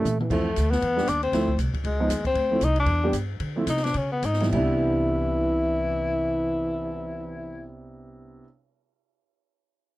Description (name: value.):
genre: jazz, small-group swing and bop.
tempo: 200-236 BPM.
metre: 4/4.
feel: swing 60% on 8ths.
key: C major.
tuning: A4 = 440 Hz.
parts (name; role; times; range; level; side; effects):
clear trombone; second line; 0.0-0.3, 4.5-7.7 s; E3 to A3; -30 LUFS; right 2 dB; none.
warm upright piano; accompaniment; 0.0-8.4 s; C2 to G4; -28 LUFS; right 2 dB; none.
upright bass; bass; 0.0-8.4 s; C2 to D3; -28 LUFS; equal; none.
open jazz drum kit; drums; 0.1-6.9 s; crash cymbal, cymbal swell, hi-hat, kick drum, ride cymbal, snare drum, toms; -33 LUFS; equal; none.
mellow tenor saxophone; melody; 0.3-7.7 s; Ab3 to E4; -26 LUFS; left 2 dB; none.
room: light reverb.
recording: dry, close 1970s-style studio recording.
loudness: -22 LUFS.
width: side -17 dB against mid.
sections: 0.3-4.5 A section; 4.5-6.9 B section.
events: drum fill 0.0-0.3; slowing down 2.3-4.5.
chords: 0.3 Dm9; 0.8 Em7; 1.3 Dm9; 1.8 Db9; 2.3 Dm9; 2.9 Em7; 3.4 Dm9; 3.9 Db5; 4.5 Cmaj9.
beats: 0.06 | 0.31 0.56 0.82 1.07 | 1.33 1.58 1.84 2.09 | 2.35 2.60 2.86 3.12 | 3.39 3.66 3.94 4.23 | 4.52 4.82 5.12 5.42 | 5.72 6.02 6.32 6.62.